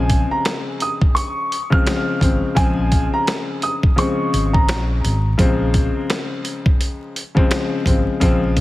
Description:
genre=hip hop, boom-bap hip-hop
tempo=85 BPM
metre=4/4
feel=swing 60% on 16ths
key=Bb minor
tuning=A4 = 440 Hz
part: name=clear upright piano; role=melody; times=0.0-4.9 s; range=Ab5 to F6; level=-23 LUFS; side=right 1 dB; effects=tape echo
part: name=dark grand piano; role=accompaniment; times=0.0-8.6 s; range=Db3 to C4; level=-21 LUFS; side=left 2 dB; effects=none
part: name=fingered electric bass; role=bass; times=0.0-8.6 s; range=Ab1 to Bb1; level=-20 LUFS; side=equal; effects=none
part: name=boom bap sampler-style drum kit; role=drums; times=0.1-8.6 s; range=hi-hat, kick drum, snare drum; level=-18 LUFS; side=equal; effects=none
room=digital ambience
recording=heavily compressed radio sound, vinyl crackle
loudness=-16 LUFS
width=side -17 dB against mid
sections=0.0-8.6 A section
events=none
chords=0.0 Bbm7

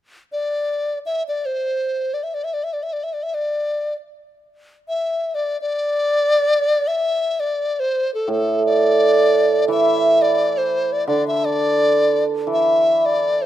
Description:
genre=chinese traditional, Chinese chamber ensemble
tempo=free time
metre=none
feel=none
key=unclear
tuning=A4 = 440 Hz
part: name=mellow hollow large dizi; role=melody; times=0.3-13.5 s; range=A4 to E5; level=-19 LUFS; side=left 2 dB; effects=none
part: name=hammered dulcimer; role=accompaniment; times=8.3-13.5 s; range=A2 to E3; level=-17 LUFS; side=right 3 dB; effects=none
room=light reverb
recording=close, detailed microphones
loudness=-17 LUFS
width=side -12 dB against mid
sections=0.0-6.9 A section; 6.9-13.5 B section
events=none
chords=none

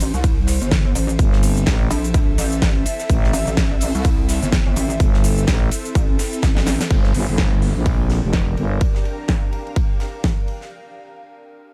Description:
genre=bass house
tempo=126 BPM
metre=4/4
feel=swing 58% on 16ths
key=G dorian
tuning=A4 = 440 Hz
part: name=pulsing pluck wobble bass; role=bass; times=0.0-6.8 s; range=G1 to C2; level=-23 LUFS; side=equal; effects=chorus, tube saturation, sidechain pumping
part: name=big-room dance drum kit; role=drums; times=0.0-10.6 s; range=hi-hat, ride cymbal, shaker, snare drum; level=-28 LUFS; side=equal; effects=low-pass filter on hats, low-pass filter on cymbals, low-pass filter on perc, low-pass filter on snare
part: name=crisp fusion drum kit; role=drums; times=0.0-10.7 s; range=hi-hat, ride cymbal, snare drum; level=-38 LUFS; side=equal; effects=high-pass filter on hats, high-pass filter on cymbals, high-pass filter on snare, high-pass filter on room
part: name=ethereal airy pad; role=texture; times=0.0-10.7 s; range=C4 to F5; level=-32 LUFS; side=equal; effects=ensemble chorus, built-in reverb, phaser, sidechain pumping
part: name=electronic kick drum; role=drums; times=0.2-10.3 s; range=none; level=-21 LUFS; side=equal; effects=none
part: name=growling FM bass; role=bass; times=1.2-8.8 s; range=F1 to Bb1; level=-22 LUFS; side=equal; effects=sidechain pumping
part: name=downlifter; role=sound effects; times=6.9-10.7 s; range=none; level=-37 LUFS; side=equal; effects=none
room=small room ambience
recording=none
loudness=-19 LUFS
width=mono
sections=0.0-6.9 A section; 6.9-10.7 B section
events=drop 0.0-6.9; drum fill 6.4-6.9; filter sweep on drum 6.9-10.7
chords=0.0 Am; 6.9 Gm7

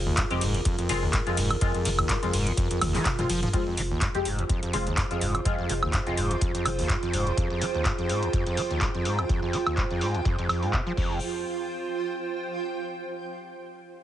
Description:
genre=acid house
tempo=125 BPM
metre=4/4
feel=swing 55% on 16ths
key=F minor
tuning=A4 = 441 Hz
part: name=dark analog pad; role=sustained chords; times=0.0-11.2 s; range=F4 to C5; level=-33 LUFS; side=right 2 dB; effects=chorus, phaser, sidechain pumping
part: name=warm sub bass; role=bass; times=0.0-7.3, 11.0-11.2 s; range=F1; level=-31 LUFS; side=equal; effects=tube saturation, sidechain pumping
part: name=overdriven acid bass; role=riff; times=0.1-11.2 s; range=Eb2 to Ab3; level=-29 LUFS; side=equal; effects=distortion, analog chorus, tape echo
part: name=electro analog drum machine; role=drums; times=0.2-11.1 s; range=crash cymbal, handclaps, hi-hat, ride cymbal, toms, woodblock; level=-30 LUFS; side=equal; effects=low-pass filter on hats, low-pass filter on cymbals, low-pass filter on snare, low-pass filter on perc, low-pass filter on toms
part: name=electronic kick drum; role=drums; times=0.2-11.1 s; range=none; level=-28 LUFS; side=equal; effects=none
part: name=band-passed chord stab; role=stabs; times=0.3-6.2 s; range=Ab3 to G4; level=-32 LUFS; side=left 2 dB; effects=phaser, lush chorus, tape echo
part: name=granular cloud pad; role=texture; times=5.4-13.1 s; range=F4 to G5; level=-33 LUFS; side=right 4 dB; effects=built-in reverb, sidechain pumping
room=light reverb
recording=heavily compressed radio sound, multiband compression, nothing above 10.7 kHz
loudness=-24 LUFS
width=side -12 dB against mid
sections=0.0-3.5 A section; 3.5-11.2 B section; 11.2-13.1 C section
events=drop 0.0-3.5; drum fill 2.8-3.5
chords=0.0 Fm; 11.2 F5

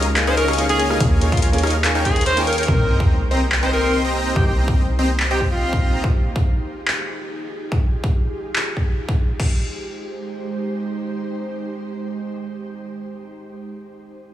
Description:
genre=future bass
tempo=143 BPM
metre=4/4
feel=half-time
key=Ab major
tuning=A4 = 440 Hz
part: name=ethereal airy pad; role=sustained chords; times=0.0-13.2 s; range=Ab3 to Db5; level=-30 LUFS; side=right 1 dB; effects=ensemble chorus, built-in reverb, sidechain pumping
part: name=dense compressed supersaw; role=riff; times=0.0-6.0 s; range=C4 to Db6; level=-23 LUFS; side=left 1 dB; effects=sidechain pumping, dub echo
part: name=warm 808-style bass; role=bass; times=0.0-6.0 s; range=C2 to Eb2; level=-22 LUFS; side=equal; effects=sidechain pumping
part: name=dubstep drum kit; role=drums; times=0.0-9.5 s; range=crash cymbal, handclaps, hi-hat, rim click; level=-24 LUFS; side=left 1 dB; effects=none
part: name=clear grand piano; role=accompaniment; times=0.2-2.7 s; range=Bb3 to C5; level=-27 LUFS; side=right 1 dB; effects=sidechain pumping, dub echo
part: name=clear alto saxophone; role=melody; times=0.3-6.0 s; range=F4 to C5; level=-24 LUFS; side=equal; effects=sidechain pumping, dub echo
part: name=electronic kick drum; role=drums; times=1.0-9.5 s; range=none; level=-19 LUFS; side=equal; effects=none
part: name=sub drop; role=sound effects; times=2.7-4.4 s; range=none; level=-25 LUFS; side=left 1 dB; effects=none
room=light reverb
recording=studio reverb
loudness=-17 LUFS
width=side -12 dB against mid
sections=0.0-2.7 A section; 2.7-9.4 B section; 9.4-12.8 C section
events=drop 0.0-2.7; kick drops out 2.3-2.7; drum fill 2.5; impact 2.7-4.4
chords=0.0 Db69; 1.0 Eb7sus4; 2.7 Cm7; 6.0 Fm9; 9.4 Abmaj7

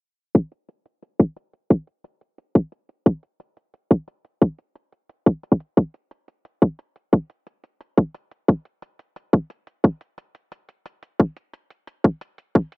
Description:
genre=dark technical drum and bass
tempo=177 BPM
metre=4/4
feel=straight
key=none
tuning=none
part: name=electronic hi-hat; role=drums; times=0.3-12.8 s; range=none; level=-47 LUFS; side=right 1 dB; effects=overdrive
part: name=electronic kick drum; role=drums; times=0.3-12.6 s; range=none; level=-14 LUFS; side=equal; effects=overdrive, high-pass filter on kick
room=digital ambience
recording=dark, warm production, low-pass filter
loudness=-20 LUFS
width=side -34 dB against mid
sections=0.3-12.8 A section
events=filter sweep 0.3-12.8; break 10.5-11.2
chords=none

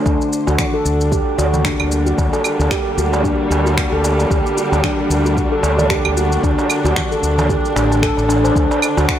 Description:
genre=organic downtempo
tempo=113 BPM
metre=4/4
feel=swing 57% on 16ths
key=unclear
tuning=A4 = 440 Hz
part: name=rich symphonic string section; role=sustained chords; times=0.0-9.2 s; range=D3 to C5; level=-22 LUFS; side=equal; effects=sidechain pumping
part: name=handpan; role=arpeggios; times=0.0-9.1 s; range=D4 to C5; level=-19 LUFS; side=equal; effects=analog delay
part: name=mellow fretless electric bass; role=bass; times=0.1-9.0 s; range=A1 to D2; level=-18 LUFS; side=equal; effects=sidechain pumping
part: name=electronic kick drum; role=drums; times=0.1-9.2 s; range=none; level=-22 LUFS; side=equal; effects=none
part: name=electronic shaker, finger snaps and claves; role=drums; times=0.1-9.2 s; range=none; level=-24 LUFS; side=right 1 dB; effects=none
part: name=darbuka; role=percussion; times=0.1-9.1 s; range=none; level=-24 LUFS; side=right 3 dB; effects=none
room=light reverb, studio ambience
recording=dry, gritty hardware recording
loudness=-14 LUFS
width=side -10 dB against mid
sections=0.0-8.6 A section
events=filter sweep on handpan 0.0-8.6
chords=0.1 Gm/D; 8.6 D

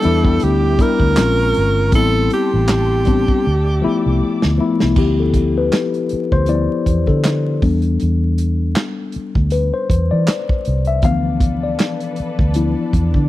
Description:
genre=R&B, neo-soul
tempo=79 BPM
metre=4/4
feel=swing 56% on 16ths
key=D dorian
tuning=A4 = 440 Hz
part: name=breathy tenor saxophone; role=melody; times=0.0-4.6 s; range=G4 to Bb4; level=-19 LUFS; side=right 2 dB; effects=slapback echo
part: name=tine electric piano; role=accompaniment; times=0.0-13.3 s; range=E3 to F5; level=-18 LUFS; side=left 4 dB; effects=none
part: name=muted studio string section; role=sustained chords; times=0.0-5.0, 11.0-13.3 s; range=B3 to D6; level=-32 LUFS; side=equal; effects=none
part: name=warm soul drum kit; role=drums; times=0.0-13.3 s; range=crash cymbal, handclaps, hi-hat, kick drum, snare drum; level=-18 LUFS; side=equal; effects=none
part: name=vintage muted fingered electric bass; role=bass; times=0.1-13.3 s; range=G1 to E3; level=-17 LUFS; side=equal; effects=none
room=small room ambience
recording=dry, close 1970s-style studio recording, vinyl crackle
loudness=-14 LUFS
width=side -15 dB against mid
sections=0.0-5.0 A section; 5.0-13.3 B section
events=drum fill 3.4-5.0; tine electric piano solo 5.0-13.3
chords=0.0 Em7; 1.2 Bbm9; 1.9 Am9; 3.4 Dm69; 7.6 Em7; 11.0 Dm69

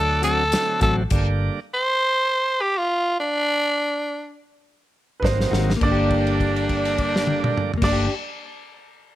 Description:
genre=straight-eighth soul blues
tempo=102 BPM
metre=4/4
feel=swing 55% on 16ths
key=G minor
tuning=A4 = 439 Hz
part: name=growling tenor saxophone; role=melody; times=0.0-8.1 s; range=D4 to C5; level=-21 LUFS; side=equal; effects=none
part: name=bright tonewheel organ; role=accompaniment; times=0.0-1.6, 5.2-8.1 s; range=D3 to D4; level=-27 LUFS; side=right 5 dB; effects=overdrive, slow rotary speaker
part: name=vintage muted fingered electric bass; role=bass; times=0.0-1.5, 5.2-8.1 s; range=G1 to D2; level=-24 LUFS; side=equal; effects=none
part: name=mellow electric guitar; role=stabs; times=0.2-1.0, 5.5-8.1 s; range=Eb3 to G4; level=-26 LUFS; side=left 5 dB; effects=plate reverb
part: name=warm soul drum kit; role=drums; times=0.2-1.3, 5.2-8.0 s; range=crash cymbal, hi-hat, kick drum, snare drum, toms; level=-25 LUFS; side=equal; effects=none
part: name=warm upright piano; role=second line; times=5.2-8.1 s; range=B4 to D5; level=-28 LUFS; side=right 3 dB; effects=plate reverb, digital delay
room=light reverb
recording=none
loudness=-19 LUFS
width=side -14 dB against mid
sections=0.0-5.8 A section; 5.8-8.2 B section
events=stop 1.1-5.2; drum fill 5.2-5.8; held note 5.8-7.8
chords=0.0 D7; 1.1 Gm; 5.2 Ab7; 5.8 Gm

